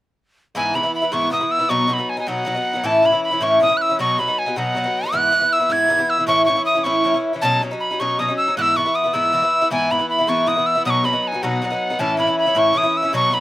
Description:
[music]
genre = celtic folk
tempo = 105 BPM (dotted quarters)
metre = 6/8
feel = straight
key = E major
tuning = A4 = 440 Hz
[part]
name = Irish bouzouki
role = accompaniment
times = 0.5-13.4 s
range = G#2 to E4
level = -20 LUFS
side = left 1 dB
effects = none
[part]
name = breathy bright tin whistle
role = melody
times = 0.6-13.4 s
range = F#5 to G#6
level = -18 LUFS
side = equal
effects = none
[sound]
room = little or no reverb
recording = recorded outdoors, with no room sound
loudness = -16 LUFS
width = side -15 dB against mid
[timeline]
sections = 0.6-9.7 A section; 9.7-13.4 A section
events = none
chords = 0.6 E; 1.7 B; 2.9 A; 4.0 B; 5.1 E; 6.3 A; 7.4 Badd9; 8.6 E; 10.8 B; 12.0 A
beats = | 0.56 1.14 | 1.71 2.28 | 2.85 3.42 | 4.00 4.57 | 5.14 5.71 | 6.28 6.86 | 7.43 8.00 | 8.57 9.14 | 9.71 10.28 | 10.85 11.42 | 11.99 12.56 | 13.13

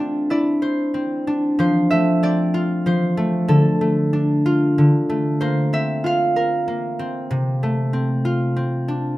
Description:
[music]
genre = children's music, lullaby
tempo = 94 BPM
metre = 3/4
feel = straight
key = F major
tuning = A4 = 441 Hz
[part]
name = concert harp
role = solo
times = 0.0-9.2 s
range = C3 to F5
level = -17 LUFS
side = equal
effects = none
[sound]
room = moderate studio reverb, RT60 0.7 s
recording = rough home demo mix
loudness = -17 LUFS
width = side -17 dB against mid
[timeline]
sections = 0.0-9.2 A section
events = none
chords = 0.0 Cadd9; 1.6 F; 3.5 Dm; 5.4 Bbsus2; 7.3 F/C; 8.6 Csus2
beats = 0.30 0.94 | 1.59 2.23 2.87 | 3.50 4.13 4.77 | 5.41 6.04 6.66 | 7.29 7.92 8.56

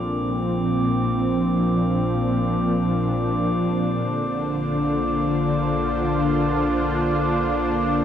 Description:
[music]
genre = ambient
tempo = free time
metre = none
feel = none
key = Bb major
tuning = A4 = 440 Hz
[part]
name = warm analog pad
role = sustained chords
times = 0.0-8.0 s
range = Bb2 to F4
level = -21 LUFS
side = equal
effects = chorus, tremolo
[part]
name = concert harp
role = arpeggios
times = 0.0-8.0 s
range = none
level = barely audible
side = none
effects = none
[part]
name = warm sub bass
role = bass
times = 0.0-8.0 s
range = Bb1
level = -34 LUFS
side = equal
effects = none
[part]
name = bowed-like drone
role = drone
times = 0.6-8.0 s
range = Bb3 to C5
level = -30 LUFS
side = equal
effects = built-in reverb
[part]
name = glass harmonica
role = texture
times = 0.0-8.0 s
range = D6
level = -29 LUFS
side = equal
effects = none
[sound]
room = wet cathedral reverb, RT60 5.6 s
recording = cassette tape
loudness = -20 LUFS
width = side -9 dB against mid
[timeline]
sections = 0.0-8.0 A section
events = fade-in on sub bass 0.0-8.0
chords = 0.0 Bbmaj9; 4.0 Dm/Bb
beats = free time

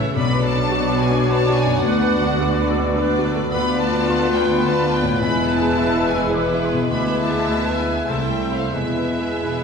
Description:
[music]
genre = classical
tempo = 86-110 BPM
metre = 3/4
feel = rubato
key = unclear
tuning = A4 = 444 Hz
[part]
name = clear concert grand piano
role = melody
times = 0.0-9.6 s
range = B1 to C5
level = -23 LUFS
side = left 3 dB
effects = none
[part]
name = clear symphonic violin section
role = melody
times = 0.0-9.6 s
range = B4 to B5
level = -27 LUFS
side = left 2 dB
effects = none
[part]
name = clear symphonic violin section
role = second line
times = 0.0-9.6 s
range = G#4 to E5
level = -29 LUFS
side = left 2 dB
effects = none
[part]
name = mellow clarinet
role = second line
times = 0.0-9.6 s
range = E4 to A4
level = -30 LUFS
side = left 3 dB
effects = none
[part]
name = mellow flute section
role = second line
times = 0.0-9.6 s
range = G#5 to F#6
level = -30 LUFS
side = left 1 dB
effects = none
[part]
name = warm oboe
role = second line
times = 0.0-9.6 s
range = B4 to E5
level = -29 LUFS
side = right 1 dB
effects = none
[part]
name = clear symphonic viola section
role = accompaniment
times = 0.0-9.6 s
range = F#3 to F#4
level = -28 LUFS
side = right 1 dB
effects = none
[part]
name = mellow bassoon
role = accompaniment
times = 0.0-9.6 s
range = E3 to B3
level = -28 LUFS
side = right 3 dB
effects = none
[part]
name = clear French horn section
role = sustained chords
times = 0.0-9.6 s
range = G#3 to F4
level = -26 LUFS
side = left 4 dB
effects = none
[part]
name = clear symphonic double bass section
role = bass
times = 0.0-9.6 s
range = E1 to D2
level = -28 LUFS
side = right 5 dB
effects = none
[part]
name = rich studio cello section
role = bass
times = 0.0-9.6 s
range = C2 to B2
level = -26 LUFS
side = right 4 dB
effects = none
[part]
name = timpani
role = percussion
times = 5.2-6.0, 8.7-9.6 s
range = none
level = barely audible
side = none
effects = none
[sound]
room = wet recital hall reverb, RT60 1.7 s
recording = none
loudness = -17 LUFS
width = side -6 dB against mid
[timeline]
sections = 0.0-9.6 A section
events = timpani fill 8.7-9.6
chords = 0.1 Bm7; 1.8 Bm/D; 3.5 Bm7b5/D; 5.2 E; 6.9 E7/D; 8.1 Am/C; 8.7 E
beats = | 0.14 0.72 1.28 | 1.83 2.41 2.97 | 3.53 4.07 4.63 | 5.20 5.77 6.34 | 6.90 7.48 8.08 | 8.74 9.43

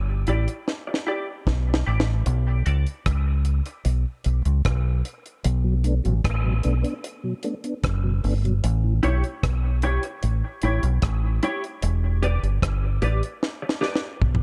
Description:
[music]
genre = dub reggae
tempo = 75 BPM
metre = 4/4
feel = straight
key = B minor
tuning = A4 = 440 Hz
[part]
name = deep dub fingered electric bass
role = bass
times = 0.0-14.4 s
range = E1 to C#2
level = -24 LUFS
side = equal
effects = none
[part]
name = clean electric guitar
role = accompaniment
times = 0.3-2.9, 9.0-14.0 s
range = E4 to D5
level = -31 LUFS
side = equal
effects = analog chorus, high-pass filter, dub echo
[part]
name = deep reggae drum kit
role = drums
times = 0.3-14.4 s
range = hi-hat, kick drum, rim click, snare drum, toms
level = -30 LUFS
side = equal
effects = none
[part]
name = mellow tonewheel organ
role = accompaniment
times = 2.5-8.9 s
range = A2 to D4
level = -32 LUFS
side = equal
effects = chorus vibrato, slow rotary speaker, high-pass filter
[sound]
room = light reverb, small room ambience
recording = dark, warm production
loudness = -24 LUFS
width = mono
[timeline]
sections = 0.0-14.4 A section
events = break 0.0-2.3; drum fill 0.7-2.3, 13.4-14.4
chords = 0.0 Em7; 2.3 Bm7; 8.6 A7; 11.8 Em7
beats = 0.67 1.47 | 2.26 3.06 3.86 4.65 | 5.45 6.25 7.04 7.84 | 8.63 9.43 10.23 11.02 | 11.82 12.62 13.42 14.21

